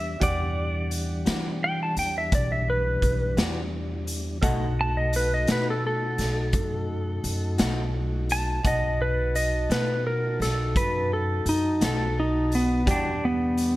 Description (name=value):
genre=slow blues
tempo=57 BPM (dotted quarters)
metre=12/8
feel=straight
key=E minor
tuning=A4 = 439 Hz
part: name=clean lap steel guitar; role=melody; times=0.0-13.8 s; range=B3 to A5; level=-26 LUFS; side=equal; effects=none
part: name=bright baby grand piano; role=accompaniment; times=0.0-13.8 s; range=G4 to A5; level=-36 LUFS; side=right 3 dB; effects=none
part: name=mellow tonewheel organ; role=sustained chords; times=0.0-13.8 s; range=E3 to A5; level=-34 LUFS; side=left 1 dB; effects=slow rotary speaker
part: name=upright bass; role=bass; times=0.0-13.8 s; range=B1 to E3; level=-28 LUFS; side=equal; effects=none
part: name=raw garage drum kit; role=drums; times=0.2-13.7 s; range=hi-hat, kick drum, snare drum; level=-29 LUFS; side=equal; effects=gated reverb
part: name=electric guitar through a small old amp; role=accompaniment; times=1.3-13.1 s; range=B2 to F#4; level=-35 LUFS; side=left 3 dB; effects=harmonic tremolo
room=light reverb, studio ambience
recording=bright 1980s-style digital production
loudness=-23 LUFS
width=side -17 dB against mid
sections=0.0-13.8 A section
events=none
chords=0.0 Em9; 4.4 B7; 12.9 Em9